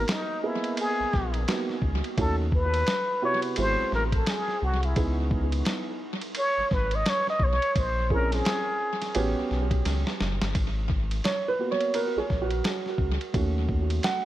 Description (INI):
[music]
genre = hip hop, jazz-hop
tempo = 86 BPM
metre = 4/4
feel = swing 60% on 16ths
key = G# minor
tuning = A4 = 444 Hz
[part]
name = trumpet with plunger mute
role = melody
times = 0.0-9.4 s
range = D#4 to D#5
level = -28 LUFS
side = equal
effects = tape echo
[part]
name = round analog bass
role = bass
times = 0.0-14.0 s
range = F#1 to D#2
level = -28 LUFS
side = equal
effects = none
[part]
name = lo-fi sampler-style drum kit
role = drums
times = 0.1-14.2 s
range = hi-hat, kick drum, ride cymbal, snare drum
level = -30 LUFS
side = equal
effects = tape echo
[part]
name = dark upright piano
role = accompaniment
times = 0.4-14.2 s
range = B#2 to F#5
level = -30 LUFS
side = right 4 dB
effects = tape echo
[sound]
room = light reverb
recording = echo-heavy mix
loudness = -24 LUFS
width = side -14 dB against mid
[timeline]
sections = 0.0-10.6 A section; 10.6-14.2 A section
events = muted trumpet solo 0.0-10.6; drum fill 9.9-10.6; upright piano solo 10.6-14.2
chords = 0.0 G#m9; 2.2 D#m7b5; 3.6 G#7b13; 5.0 C#m7; 7.8 A#m7b5; 9.2 A13; 10.6 G#m9; 13.3 D#m7b5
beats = 0.09 0.78 1.48 | 2.18 2.88 3.57 4.27 | 4.97 5.67 6.36 7.06 | 7.76 8.46 9.15 9.85 | 10.55 11.25 11.95 12.64 | 13.34 14.04